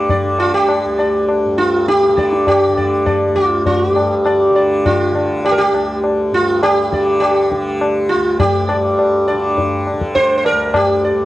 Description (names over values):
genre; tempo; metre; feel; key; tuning
indian classical, Hindustani; 102 BPM; 4/4; straight; unclear; A4 = 440 Hz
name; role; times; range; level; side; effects
sitar; melody; 0.0-11.2 s; F4 to D5; -14 LUFS; equal; none
tanpura; drone; 0.0-11.2 s; D2 to D3; -22 LUFS; equal; none
tabla; percussion; 0.1-11.0 s; none; -19 LUFS; left 2 dB; none
room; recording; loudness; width
light reverb; worn, warbling old tape, cassette tape, warbly pitch drift; -12 LUFS; side -16 dB against mid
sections
0.0-11.2 A section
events
speeding up 0.0-11.2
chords
none